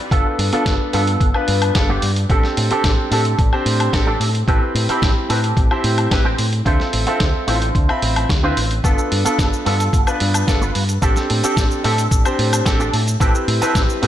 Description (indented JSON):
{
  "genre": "nu-disco, nu disco",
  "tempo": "110 BPM",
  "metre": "4/4",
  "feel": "straight",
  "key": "unclear",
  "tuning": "A4 = 438 Hz",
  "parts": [
    { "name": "swell and riser", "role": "sound effects", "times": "0.0-0.1, 13.7-14.1 s", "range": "none", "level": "barely audible", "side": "none", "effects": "none" },
    { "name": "bright baby grand piano", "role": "accompaniment", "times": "0.1-14.1 s", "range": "B3 to B5", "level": "-21 LUFS", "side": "equal", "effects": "sidechain pumping, analog delay" },
    { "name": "electric guitar with an envelope filter", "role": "riff", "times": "0.1-14.1 s", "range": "B3 to C5", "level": "-24 LUFS", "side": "right 2 dB", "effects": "ensemble chorus, low-pass filter, analog delay" },
    { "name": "fingered electric bass with an envelope filter", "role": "bass", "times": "0.1-14.1 s", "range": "G1 to A2", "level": "-20 LUFS", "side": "equal", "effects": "tube saturation" },
    { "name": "dusty soul sampler-style drum kit", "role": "drums", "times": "0.1-14.1 s", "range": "hi-hat, shaker, snare drum, woodblock", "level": "-23 LUFS", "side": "left 1 dB", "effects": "none" },
    { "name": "electronic kick drum", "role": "drums", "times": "0.1-13.9 s", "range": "none", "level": "-18 LUFS", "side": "equal", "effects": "none" }
  ],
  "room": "light reverb",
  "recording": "none",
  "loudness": "-15 LUFS",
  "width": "side -11 dB against mid",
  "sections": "0.0-14.1 A section",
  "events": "none",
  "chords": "0.1 G9; 2.3 Gsus24/A; 4.5 Am7; 6.7 Dm7; 8.8 G9; 11.0 Gsus24/A; 13.2 Am7"
}